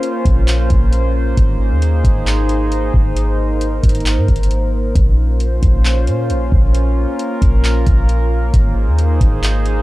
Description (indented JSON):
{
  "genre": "hip hop, atmospheric cloud-rap",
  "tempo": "134 BPM",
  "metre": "4/4",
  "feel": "half-time",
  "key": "Bb minor",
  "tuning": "A4 = 440 Hz",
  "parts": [
    { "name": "warbly tape-like pad", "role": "sustained chords", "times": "0.0-9.8 s", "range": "Bb3 to C5", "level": "-21 LUFS", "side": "equal", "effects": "chorus, built-in reverb, sidechain pumping" },
    { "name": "booming analog drum machine", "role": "drums", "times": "0.0-9.8 s", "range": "handclaps, hi-hat, kick drum", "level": "-15 LUFS", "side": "equal", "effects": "none" },
    { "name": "clean 808-style bass", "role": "bass", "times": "0.3-9.8 s", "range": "Ab1 to Bb2", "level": "-15 LUFS", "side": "equal", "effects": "none" }
  ],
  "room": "digital ambience",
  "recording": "dry, gritty hardware recording, cassette tape",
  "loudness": "-12 LUFS",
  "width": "side -18 dB against mid",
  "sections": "0.0-9.8 A section",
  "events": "none",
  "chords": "0.0 Bbmadd9; 1.4 Abadd9; 5.0 Bbmadd9; 8.5 Abadd9",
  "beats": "0.03 0.48 0.93 | 1.37 1.82 2.27 2.72 | 3.16 3.61 4.06 4.51 | 4.96 5.40 5.85 6.30 | 6.75 7.19 7.64 8.09 | 8.54 8.98 9.43"
}